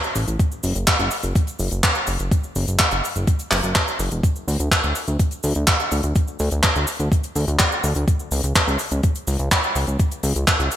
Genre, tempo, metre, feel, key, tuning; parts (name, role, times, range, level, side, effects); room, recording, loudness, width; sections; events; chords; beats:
italo disco; 125 BPM; 4/4; straight; F# minor; A4 = 440 Hz
damped 70s drum kit; drums; 0.0-10.8 s; cabasa, handclaps, hi-hat; -21 LUFS; equal; small room reverb, gated reverb
fat analog bass; bass; 0.2-10.7 s; E1 to D2; -23 LUFS; equal; ping-pong delay
electronic kick drum; drums; 0.4-10.6 s; -19 LUFS; equal; small room reverb
light reverb; bright 1980s-style digital production; -18 LUFS; side -11 dB against mid
0.0-10.8 A section
| 0.40 0.88 1.36 1.84 | 2.32 2.80 3.28 3.76 | 4.24 4.72 5.20 5.68 | 6.16 6.64 7.12 7.60 | 8.08 8.56 9.04 9.52 | 10.00 10.48